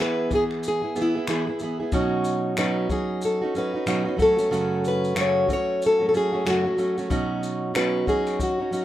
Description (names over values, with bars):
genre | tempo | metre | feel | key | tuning
acoustic pop | 93 BPM | 4/4 | swing 60% on 16ths | unclear | A4 = 440 Hz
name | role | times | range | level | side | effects
fingerpicked plugged-in steel-string acoustic guitar | melody | 0.0-8.8 s | E4 to C#5 | -23 LUFS | left 1 dB | none
fingerpicked plugged-in steel-string acoustic guitar | accompaniment | 0.0-8.8 s | F#2 to G#4 | -25 LUFS | right 2 dB | none
jazz brush drum kit | drums | 0.3-8.8 s | finger snaps, kick drum, shaker | -31 LUFS | left 2 dB | none
room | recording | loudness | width
moderate studio reverb, RT60 0.5 s | minimal, uncompressed stereo recording | -21 LUFS | side -13 dB against mid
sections
0.0-8.8 A section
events
none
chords
0.0 E; 1.9 Badd9; 4.2 F#m; 7.1 Badd9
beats
0.63 1.28 | 1.92 2.57 3.21 3.86 | 4.51 5.16 5.80 6.45 | 7.10 7.74 8.39